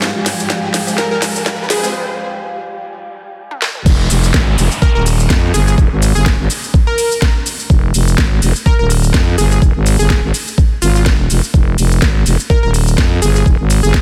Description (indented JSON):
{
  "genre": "bass house",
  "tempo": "125 BPM",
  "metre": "4/4",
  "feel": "swing 55% on 16ths",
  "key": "F minor",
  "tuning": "A4 = 440 Hz",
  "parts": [
    { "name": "dark symphonic string section", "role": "sustained chords", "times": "0.0-3.8 s", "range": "Ab2 to G3", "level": "-26 LUFS", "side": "equal", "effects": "sidechain pumping" },
    { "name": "garage drum kit", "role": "drums", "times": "0.0-14.0 s", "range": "crash cymbal, hi-hat, shaker, snare drum, toms", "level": "-22 LUFS", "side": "equal", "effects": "high-pass filter on snare, studio reverb, high-pass filter on perc, high-pass filter on hats, high-pass filter on toms, high-pass filter on cymbals" },
    { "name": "riser and downlifter", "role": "sound effects", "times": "0.0-7.7 s", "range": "none", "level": "-27 LUFS", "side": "equal", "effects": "none" },
    { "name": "deep dark ambient pad", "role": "texture", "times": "0.0-1.9 s", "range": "F5 to Ab5", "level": "-30 LUFS", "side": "equal", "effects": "chorus, built-in reverb, sidechain pumping" },
    { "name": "band-passed chord stab", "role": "stabs", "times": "0.9-1.9 s", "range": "Ab3 to G4", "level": "-32 LUFS", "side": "equal", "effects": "none" },
    { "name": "plucky unison lead", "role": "melody", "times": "1.0-1.9, 4.8-14.0 s", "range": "F4 to Bb4", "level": "-23 LUFS", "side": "equal", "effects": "delay" },
    { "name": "growling FM bass", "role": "bass", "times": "3.9-14.0 s", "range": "Eb1 to F2", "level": "-15 LUFS", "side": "equal", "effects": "sidechain pumping" },
    { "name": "electronic kick drum", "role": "drums", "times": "3.9-14.0 s", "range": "none", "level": "-15 LUFS", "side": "equal", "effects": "studio reverb" }
  ],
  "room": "light reverb, digital ambience",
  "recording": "dense, heavily limited modern master, high-pass filter",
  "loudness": "-13 LUFS",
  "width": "mono",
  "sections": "0.0-3.9 A section; 3.9-14.0 B section",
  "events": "build-up 0.0-3.9; drum fill 0.0-1.9, 3.5-3.9; riser 0.0-1.9; filter sweep on string section 0.0-3.9; break 1.9-3.9; drop 3.9-14.0",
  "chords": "0.0 Fmadd9"
}